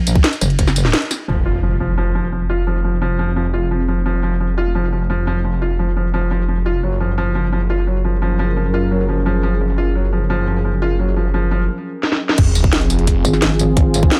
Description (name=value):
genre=dark technical drum and bass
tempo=173 BPM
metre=4/4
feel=straight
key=F phrygian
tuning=A4 = 440 Hz
part: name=metallic wobble bass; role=bass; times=0.0-0.9, 13.2-14.1 s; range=Gb1 to Bb1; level=-18 LUFS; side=equal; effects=chorus
part: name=drum and bass drum kit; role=drums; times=0.1-1.2, 12.0-14.2 s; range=crash cymbal, hi-hat, ride cymbal, snare drum, tambourine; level=-20 LUFS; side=equal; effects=low-pass filter on snare, low-pass filter on hats, low-pass filter on cymbals, low-pass filter on perc, low-pass filter on room
part: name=electronic kick drum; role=drums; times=0.2-0.7, 12.4-14.1 s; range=none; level=-16 LUFS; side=equal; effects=none
part: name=sweeping resonant pad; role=sustained chords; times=1.3-14.2 s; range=F3 to Bb4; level=-27 LUFS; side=equal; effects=lush chorus, sidechain pumping
part: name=felt-muted upright piano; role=arpeggios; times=1.3-11.6 s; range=F3 to F4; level=-23 LUFS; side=equal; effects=sidechain pumping, low-pass filter, delay
part: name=snarling distorted saw bass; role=bass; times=1.3-13.2 s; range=F1 to Gb1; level=-21 LUFS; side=equal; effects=distortion, tube saturation, sidechain pumping
part: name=impact and sub drop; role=sound effects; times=1.3-2.7, 12.4-13.8 s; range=none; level=-24 LUFS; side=equal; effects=none
room=light reverb, digital ambience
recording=none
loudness=-18 LUFS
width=mono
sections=0.0-1.3 A section; 1.3-12.4 B section; 12.4-14.2 A section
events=drop 0.0-1.3, 12.4-14.2; break 0.9-1.3; band accent 0.9; impact 1.3-2.7, 12.4-13.8; drum fill 12.0-12.4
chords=0.0 Gb; 1.3 Fm; 6.8 Gb; 12.4 Fm